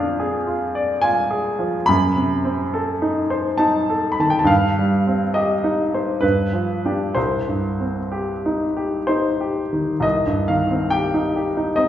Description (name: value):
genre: classical, romantic nocturne for solo piano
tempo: 61-72 BPM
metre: 3/4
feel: rubato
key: C minor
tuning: A4 = 440 Hz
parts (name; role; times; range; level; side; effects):
- clear grand piano; solo; 0.0-11.9 s; C2 to B5; -18 LUFS; equal; none
room: wet recital hall reverb, RT60 1.3 s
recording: heard from further back in the room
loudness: -18 LUFS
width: side -11 dB against mid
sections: 0.0-10.0 A section; 10.0-11.9 B section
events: none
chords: 0.0 Ddim/F; 1.9 F#dim7; 4.5 Cm/G; 6.2 G7; 7.2 Cm